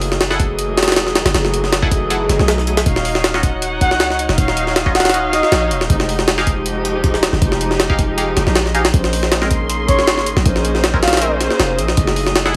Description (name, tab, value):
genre	drum and bass, jungle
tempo	158 BPM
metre	4/4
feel	swing 53% on 16ths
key	Bb minor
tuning	A4 = 440 Hz
part	dark studio string section	sustained chords	0.0-12.5 s	Fb3 to C6	-23 LUFS	equal	none
part	warm 808-style bass	bass	0.0-12.6 s	Eb1 to Db2	-23 LUFS	equal	none
part	jungle sampler-style drum kit	drums	0.0-12.5 s	hi-hat, kick drum, snare drum	-19 LUFS	equal	small room ambience
part	drifting glass-harmonics texture	texture	0.0-12.6 s	Eb4 to Eb5	-30 LUFS	equal	chorus, built-in reverb
part	band-passed chord stab	stabs	0.3-12.5 s	Ab3 to Gb5	-26 LUFS	equal	phaser, dub echo
part	breathy flute-like synth lead	melody	3.8-5.7, 9.9-11.3 s	Db5 to Gb5	-24 LUFS	equal	chorus, dub echo
room	light reverb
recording	vinyl crackle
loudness	-16 LUFS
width	mono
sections	0.0-12.6 A section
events	none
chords	0.0 Gbm9; 2.9 Ebm9; 5.9 Fm9; 8.9 Bbm9; 12.0 Gbm9